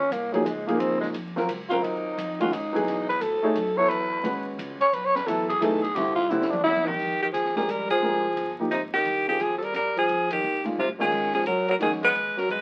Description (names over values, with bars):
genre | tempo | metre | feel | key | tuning
modal jazz | 175 BPM | 3/4 | swing 65% on 8ths | F dorian from 7.0 s | A4 = 440 Hz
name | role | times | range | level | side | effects
growling tenor saxophone | second line | 0.0-12.6 s | C3 to C#5 | -28 LUFS | equal | none
upright bass | bass | 0.0-12.6 s | G1 to B2 | -43 LUFS | equal | none
open jazz drum kit | drums | 0.0-12.6 s | crash cymbal, hi-hat, kick drum, ride cymbal, snare drum, toms | -42 LUFS | equal | none
dark baby grand piano | accompaniment | 0.3-12.0 s | D3 to C#5 | -30 LUFS | equal | none
edgy alto saxophone | melody | 6.7-12.6 s | Eb4 to Cb5 | -27 LUFS | equal | none
room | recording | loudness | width
moderate studio reverb, RT60 0.6 s | very old 78 rpm record, vinyl crackle | -25 LUFS | mono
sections
0.0-7.0 A section; 7.0-12.6 B section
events
tenor saxophone solo 0.0-7.0; drum fill 6.3-7.0, 10.8-11.1; band accent 7.8, 10.3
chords
0.0 Eb9sus4; 2.9 B9sus4; 6.0 C; 7.0 Fm9; 11.1 Abm9